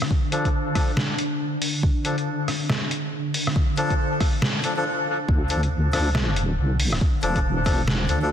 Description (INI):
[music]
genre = deep dubstep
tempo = 139 BPM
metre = 4/4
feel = swing 60% on 16ths, half-time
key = D minor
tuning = A4 = 439 Hz
[part]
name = granular cloud pad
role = sustained chords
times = 0.0-8.3 s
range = D3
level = -29 LUFS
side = equal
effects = built-in reverb
[part]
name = trip hop sampler-style drum kit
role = drums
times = 0.0-8.2 s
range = hi-hat, rim click, snare drum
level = -26 LUFS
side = equal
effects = none
[part]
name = electronic kick drum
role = drums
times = 0.1-7.8 s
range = none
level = -22 LUFS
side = equal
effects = none
[part]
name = melodica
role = stabs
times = 0.3-8.3 s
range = F3 to A4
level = -27 LUFS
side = left 2 dB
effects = low-pass filter, dub echo
[part]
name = deep soft wobble bass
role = bass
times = 5.3-8.3 s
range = E1 to D2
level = -23 LUFS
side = equal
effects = chorus
[sound]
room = moderate lush hall reverb, RT60 2.0 s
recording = dense, heavily limited modern master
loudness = -20 LUFS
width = side -9 dB against mid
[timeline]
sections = 0.0-5.3 A section; 5.3-8.3 B section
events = build-up 0.0-5.3; stop 4.9-5.3; drop 5.3-8.3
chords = 0.0 Dm